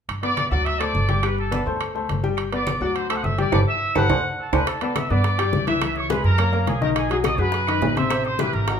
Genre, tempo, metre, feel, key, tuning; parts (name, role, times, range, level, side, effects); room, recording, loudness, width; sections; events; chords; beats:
latin, salsa; 210 BPM; 4/4; straight; G major; A4 = 438 Hz
upright bass; bass; 0.1-8.8 s; G1 to G2; -24 LUFS; right 1 dB
claves; percussion; 0.1-8.8 s; -36 LUFS; left 6 dB
congas; percussion; 0.1-8.8 s; -30 LUFS; left 3 dB
timbales; percussion; 0.1-8.8 s; -29 LUFS; right 8 dB
clear trumpet section; melody; 0.2-8.8 s; F#4 to E6; -25 LUFS; right 1 dB
bright baby grand piano; accompaniment; 0.2-8.8 s; C3 to G5; -25 LUFS; left 4 dB
bongos; percussion; 4.7-8.8 s; -30 LUFS; left 8 dB
moderate large studio reverb, RT60 0.9 s; minimal, uncompressed stereo recording; -19 LUFS; side -7 dB against mid
0.1-4.7 A section; 4.7-8.8 B section
drum fill 3.5-4.7; band accent 3.5-4.7
0.1 G; 0.7 D7; 1.2 Gadd9; 1.8 D5; 2.4 G; 3.0 D7; 3.5 Gadd9; 4.1 D7; 4.7 Gadd9; 5.8 C#m7; 6.4 F#; 7.0 B6; 8.1 Am7
| 0.09 0.38 0.66 0.95 | 1.24 1.52 1.81 2.10 | 2.38 2.67 2.96 3.24 | 3.53 3.81 4.10 4.39 | 4.67 4.96 5.25 5.53 | 5.82 6.10 6.39 6.67 | 6.96 7.25 7.53 7.82 | 8.11 8.39 8.68